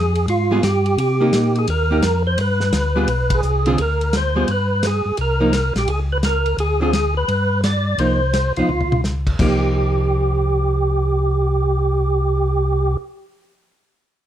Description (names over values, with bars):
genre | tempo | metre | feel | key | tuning
soul jazz organ trio | 171 BPM | 4/4 | swing 64% on 8ths | C minor | A4 = 441 Hz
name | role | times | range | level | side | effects
percussive tonewheel organ | melody | 0.0-13.0 s | F4 to D5 | -20 LUFS | right 2 dB | slow rotary speaker, overdrive, chorus vibrato, plate reverb
mellow tonewheel organ | bass | 0.0-13.0 s | Bb1 to C3 | -20 LUFS | equal | chorus vibrato, slow rotary speaker
warm soul drum kit | drums | 0.2-9.5 s | crash cymbal, hi-hat, kick drum, ride cymbal, snare drum, toms | -24 LUFS | left 1 dB | none
archtop guitar, miked and amplified | accompaniment | 0.5-13.7 s | D3 to Ab4 | -21 LUFS | right 1 dB | none
room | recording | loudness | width
light reverb | dark, warm production | -16 LUFS | side -10 dB against mid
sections
0.0-3.8 A section; 3.8-9.4 B section; 9.4-12.2 C section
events
band accent 3.3; drum fill 8.7-9.0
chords
0.0 G7(no3); 1.0 Cm7; 2.4 G7b9; 3.8 Dm7b5; 4.5 G; 5.2 Cm7; 5.9 Bbm7/Db; 6.6 Dm7b5; 7.3 G; 8.0 Cm7; 8.7 Db; 9.4 Cm7